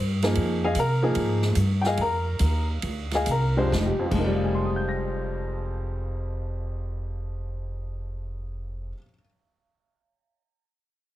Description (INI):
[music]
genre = modal jazz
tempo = 129-152 BPM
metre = 4/4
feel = swing 67% on 8ths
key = F dorian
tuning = A4 = 437 Hz
[part]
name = upright bass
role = bass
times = 0.0-8.9 s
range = F1 to C3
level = -27 LUFS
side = equal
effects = none
[part]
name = warm upright piano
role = accompaniment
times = 0.2-9.3 s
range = F2 to Bb6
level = -26 LUFS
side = left 1 dB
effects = none
[part]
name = swinging big-band drum kit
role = drums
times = 0.2-4.2 s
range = crash cymbal, hi-hat, kick drum, ride cymbal, snare drum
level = -34 LUFS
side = right 2 dB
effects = none
[sound]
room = light reverb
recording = heavily compressed radio sound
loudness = -23 LUFS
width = side -14 dB against mid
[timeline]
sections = 0.0-3.7 A section; 3.7-7.4 B section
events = slowing down 0.4-3.7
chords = 0.0 Fm9